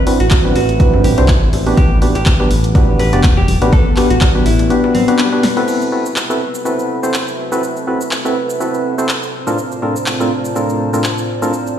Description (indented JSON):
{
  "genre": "deep house",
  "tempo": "123 BPM",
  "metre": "4/4",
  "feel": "swing 55% on 16ths",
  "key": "A dorian",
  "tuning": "A4 = 438 Hz",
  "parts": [
    { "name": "vintage hollow-body jazz guitar", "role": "melody", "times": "0.0-5.1 s", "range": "C4 to B4", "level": "-22 LUFS", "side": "equal", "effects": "tape echo" },
    { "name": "deep dark ambient pad", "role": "texture", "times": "0.0-11.8 s", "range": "A2 to B5", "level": "-22 LUFS", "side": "left 1 dB", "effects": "chorus, built-in reverb, sidechain pumping" },
    { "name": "percussive organ stab", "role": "stabs", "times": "0.1-11.5 s", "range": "A2 to D5", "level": "-17 LUFS", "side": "equal", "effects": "chorus, sidechain pumping, ping-pong delay" },
    { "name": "punchy analog drum machine", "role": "drums", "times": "0.1-11.8 s", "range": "cabasa, crash cymbal, handclaps, hi-hat, snare drum", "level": "-22 LUFS", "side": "equal", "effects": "overdrive, studio reverb" },
    { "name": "smooth synth bass", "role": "bass", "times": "0.2-4.7 s", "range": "E1 to A2", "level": "-15 LUFS", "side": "equal", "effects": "sidechain pumping" },
    { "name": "electronic kick drum", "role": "drums", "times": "0.3-4.3 s", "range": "none", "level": "-13 LUFS", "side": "equal", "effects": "overdrive, studio reverb" },
    { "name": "bongos and congas", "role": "percussion", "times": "0.3-5.5 s", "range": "none", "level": "-24 LUFS", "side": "left 1 dB", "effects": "overdrive, studio reverb" },
    { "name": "dark analog pad", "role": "sustained chords", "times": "5.7-11.8 s", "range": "A2 to A5", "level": "-23 LUFS", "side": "right 1 dB", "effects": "chorus, vintage 12-bit sampler grit, sidechain pumping" }
  ],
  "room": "light reverb",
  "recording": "played on a big sound system in a bare room, stone room reverb",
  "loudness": "-12 LUFS",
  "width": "side -10 dB against mid",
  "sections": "0.0-5.7 A section; 5.7-11.8 B section",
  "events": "drum fill 5.4; band accent 5.4",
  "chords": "0.0 D13; 1.5 Gmaj7; 5.7 Am69; 9.3 Bbmaj9/A",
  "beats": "0.31 0.80 1.29 | 1.77 2.26 2.75 3.24 | 3.73 4.21 4.70 5.19 | 5.68 6.17 6.65 7.14 | 7.63 8.12 8.61 9.09 | 9.58 10.07 10.56 11.04 | 11.53"
}